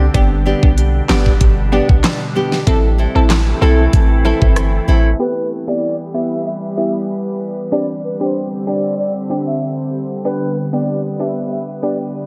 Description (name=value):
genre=dancehall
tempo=95 BPM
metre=4/4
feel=straight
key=G major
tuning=A4 = 440 Hz
part: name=glassy FM pad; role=sustained chords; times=0.0-12.3 s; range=B2 to C5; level=-25 LUFS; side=equal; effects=ensemble chorus, built-in reverb, sidechain pumping
part: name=nylon-string guitar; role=arpeggios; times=0.0-5.1 s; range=B3 to A4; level=-24 LUFS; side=equal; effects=diffuse ambient delay
part: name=clean 808-style bass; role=bass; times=0.0-5.1 s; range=G1 to B1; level=-16 LUFS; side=equal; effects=none
part: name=glassy wavetable pluck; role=accompaniment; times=0.1-12.0 s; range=B3 to A4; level=-24 LUFS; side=equal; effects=chorus
part: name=pop drum kit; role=drums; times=0.1-4.7 s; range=handclaps, hi-hat, kick drum, rim click, snare drum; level=-17 LUFS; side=equal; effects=none
part: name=mellow hollow baroque flute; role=melody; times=5.2-12.0 s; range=B4 to E5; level=-25 LUFS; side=equal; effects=diffuse ambient delay
room=moderate lush hall reverb, RT60 2.3 s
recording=dreamy mix soaked in reverb, low-pass filter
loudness=-16 LUFS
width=mono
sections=0.0-5.2 A section; 5.2-12.3 B section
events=filter sweep 5.2-12.3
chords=0.1 G; 2.7 Am; 5.2 Em; 7.7 Csus2; 10.2 G